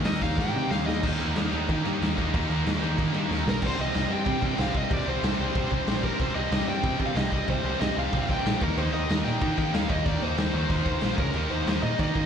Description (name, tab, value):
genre	punk rock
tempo	186 BPM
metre	4/4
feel	straight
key	C minor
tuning	A4 = 440 Hz
part	distorted electric guitar	riff	0.0-12.3 s	Bb2 to Eb4	-32 LUFS	left 13 dB	overdrive
part	overdriven electric guitar	riff	0.0-12.3 s	Bb2 to Eb4	-33 LUFS	right 11 dB	slapback echo
part	scooped high-gain guitar	riff	0.0-12.3 s	Bb2 to Eb4	-35 LUFS	right 1 dB	distortion, slapback echo
part	growling picked electric bass	bass	0.0-12.3 s	Bb1 to Eb3	-29 LUFS	equal	overdrive
part	raw garage drum kit	drums	0.0-12.2 s	crash cymbal, hi-hat, kick drum, snare drum	-29 LUFS	equal	none
part	high-gain lead guitar	melody	0.1-1.0, 3.5-12.3 s	Bb4 to G5	-32 LUFS	equal	distortion, slapback echo, digital delay
room	small room ambience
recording	live gig heard through the venue's PA, club reverb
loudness	-24 LUFS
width	side -8 dB against mid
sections	0.0-1.0 A section; 1.0-3.6 B section; 3.6-12.3 C section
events	lead electric guitar solo 0.0-1.0; drum fill 0.4-1.0, 3.3-3.6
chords	0.0 Eb; 1.0 Eb5; 3.6 Cm; 8.6 Eb5; 11.0 Bb5; 11.2 Db5; 11.3 Eb5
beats	0.05 0.38 0.70 | 1.03 1.35 1.68 2.00 | 2.33 2.65 2.97 3.30 | 3.62 3.94 4.26 4.58 | 4.91 5.23 5.55 5.87 | 6.19 6.52 6.84 7.16 | 7.48 7.80 8.12 8.45 | 8.77 9.09 9.41 9.73 | 10.06 10.38 10.70 11.02 | 11.35 11.67 11.99